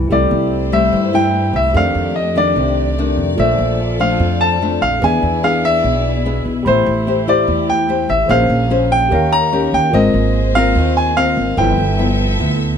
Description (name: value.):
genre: bossa nova.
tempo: 146 BPM.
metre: 4/4.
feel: straight.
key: C major.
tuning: A4 = 441 Hz.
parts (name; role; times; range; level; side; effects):
nylon-string guitar; accompaniment; 0.0-12.8 s; F2 to C5; -18 LUFS; left 5 dB; none.
upright bass; bass; 0.0-12.8 s; G1 to G2; -19 LUFS; right 2 dB; none.
bright grand piano; melody; 0.1-12.8 s; C5 to Bb5; -17 LUFS; equal; none.
tine electric piano; accompaniment; 0.1-12.8 s; E4 to B5; -24 LUFS; right 3 dB; none.
warm studio string section; sustained chords; 0.1-12.8 s; A3 to E5; -24 LUFS; equal; none.
room: light reverb.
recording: close, detailed microphones.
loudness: -13 LUFS.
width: side -7 dB against mid.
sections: 0.1-12.8 A section.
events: none.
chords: 0.1 C6; 1.7 F13; 3.4 Bbmaj7; 5.0 E7; 6.7 Am7; 8.3 Bbm9; 9.1 Eb7; 9.9 Ab69; 11.6 G13.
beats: | 0.11 0.52 0.93 1.34 | 1.75 2.15 2.56 2.97 | 3.38 3.79 4.20 4.61 | 5.02 5.43 5.84 6.25 | 6.66 7.07 7.48 7.89 | 8.29 8.71 9.12 9.52 | 9.93 10.34 10.75 11.16 | 11.57 11.98 12.39.